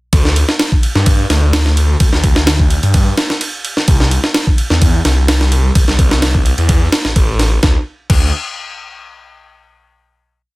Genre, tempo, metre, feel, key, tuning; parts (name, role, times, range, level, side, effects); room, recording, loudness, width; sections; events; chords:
breakbeat, breaks; 128 BPM; 4/4; straight; A4 = 440 Hz
phased detuned saw bass; bass; 0.1-8.3 s; A1 to G2; -13 LUFS; equal; phaser
breakbeat sampler-style drum kit; drums; 0.1-8.2 s; crash cymbal, kick drum, ride cymbal, snare drum; -13 LUFS; equal
little or no reverb; dense, heavily limited modern master; -10 LUFS; side -21 dB against mid
0.1-7.6 drop; 7.6-9.5 final note
drop 0.1-7.6